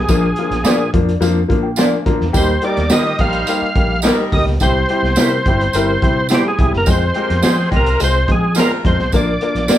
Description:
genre	uptempo 1960s-style soul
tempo	106 BPM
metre	4/4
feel	straight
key	Eb major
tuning	A4 = 439 Hz
part	overdriven tonewheel organ	melody	0.0-9.8 s	G4 to F5	-19 LUFS	right 1 dB	chorus vibrato
part	fingered electric bass	bass	0.0-9.8 s	Gb1 to F3	-20 LUFS	equal	none
part	warm upright piano	accompaniment	0.1-9.8 s	F3 to Bb5	-19 LUFS	left 3 dB	none
part	crunchy breakbeat drum kit	drums	0.1-9.8 s	hi-hat, kick drum, snare drum	-18 LUFS	equal	none
part	tambourine	percussion	0.1-9.8 s	none	-26 LUFS	right 5 dB	none
part	electric guitar through a small old amp	stabs	0.6-9.8 s	E4 to Eb5	-21 LUFS	right 3 dB	none
part	warm horn section	second line	2.6-9.0 s	Eb3 to C5	-24 LUFS	right 1 dB	none
room	moderate studio reverb, RT60 0.6 s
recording	band playing live in one room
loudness	-13 LUFS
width	side -12 dB against mid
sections	0.0-9.8 A section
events	upright piano fill 0.7-2.3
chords	0.1 Bb; 2.3 Eb; 4.6 C; 6.9 Fm; 9.1 Bb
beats	| 0.09 0.65 1.22 1.78 | 2.35 2.91 3.48 4.04 | 4.61 5.17 5.74 6.30 | 6.87 7.43 8.00 8.56 | 9.13 9.69

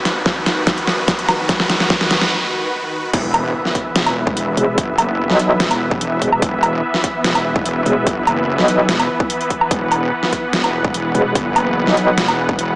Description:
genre	heavy wobble dubstep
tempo	146 BPM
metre	4/4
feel	half-time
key	unclear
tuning	A4 = 440 Hz
part	supersaw chords	sustained chords	0.0-12.8 s	D#2 to F#5	-20 LUFS	equal	sidechain pumping, low-pass filter
part	riser and impact	sound effects	0.0-4.8 s	none	-24 LUFS	equal	none
part	dubstep drum kit	drums	0.1-12.7 s	crash cymbal, hi-hat, snare drum, woodblock	-18 LUFS	equal	overdrive
part	electronic kick drum	drums	0.3-12.6 s	none	-21 LUFS	equal	overdrive
part	wobble bass	bass	3.1-12.8 s	E1 to G1	-21 LUFS	equal	chorus, overdrive
part	metallic wobble bass	bass	4.6-12.2 s	E1 to B1	-14 LUFS	equal	chorus, overdrive
room	moderate lush hall reverb, RT60 2.0 s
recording	small speaker sound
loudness	-14 LUFS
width	side -23 dB against mid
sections	0.0-3.1 A section; 3.1-12.8 B section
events	build-up 0.0-3.1; drum fill 0.0-2.3; riser 0.0-2.3; break 2.3-3.1; drop 3.1-12.8; impact 3.1-4.8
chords	0.0 B/D#; 3.1 E5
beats	0.26 0.67 1.08 | 1.49 1.90 2.31 2.72 | 3.13 3.55 3.96 4.37 | 4.78 5.19 5.60 6.01 | 6.42 6.83 7.24 7.66 | 8.07 8.48 8.89 9.30 | 9.71 10.12 10.53 10.94 | 11.35 11.77 12.18 12.59

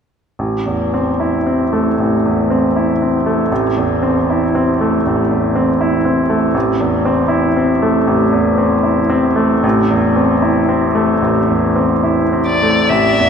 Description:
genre	classical, romantic duo for violin and grand piano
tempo	66-80 BPM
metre	4/4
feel	rubato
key	A minor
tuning	A4 = 438 Hz
part	bright baby grand piano	accompaniment	0.4-13.3 s	A1 to E4	-12 LUFS	equal	none
part	rich violin	melody	12.5-13.3 s	D5 to E5	-13 LUFS	left 2 dB	none
room	wet cathedral reverb, RT60 4.9 s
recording	none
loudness	-12 LUFS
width	side -7 dB against mid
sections	0.4-12.9 A section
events	none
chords	0.4 Am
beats	| 0.37 1.19 1.98 2.75 | 3.50 4.27 5.04 5.79 | 6.55 7.31 8.07 8.84 | 9.64 10.43 11.23 12.04 | 12.91

